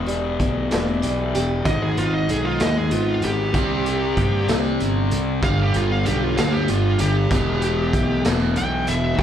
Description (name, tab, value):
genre	quiet-loud alternative rock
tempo	64 BPM (dotted quarters)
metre	6/8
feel	straight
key	unclear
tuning	A4 = 444 Hz
part	picked acoustic archtop guitar	arpeggios	0.0-3.5 s	E2 to G4	-27 LUFS	right 3 dB	slapback echo
part	thick fuzz guitar	riff	0.0-9.2 s	E2 to C4	-25 LUFS	left 9 dB	distortion, slapback echo
part	fuzz fingered electric bass	bass	0.0-9.2 s	E1 to G2	-23 LUFS	equal	overdrive
part	raw garage drum kit	drums	0.1-9.2 s	hi-hat, kick drum, snare drum	-25 LUFS	equal	none
part	high-gain lead guitar	melody	1.7-9.2 s	F4 to G5	-25 LUFS	right 2 dB	distortion, slapback echo
part	overdriven semi-hollow guitar	riff	3.5-9.2 s	E2 to C4	-26 LUFS	right 11 dB	slapback echo
room	light reverb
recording	live gig heard through the venue's PA, club reverb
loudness	-18 LUFS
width	side -9 dB against mid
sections	0.0-9.2 A section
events	lead electric guitar solo 0.0-9.2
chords	0.0 Em; 1.7 Abm; 3.5 C5; 5.4 G; 7.3 Em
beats	0.72 | 1.66 2.60 | 3.55 4.49 | 5.43 6.37 | 7.31 8.25 | 9.19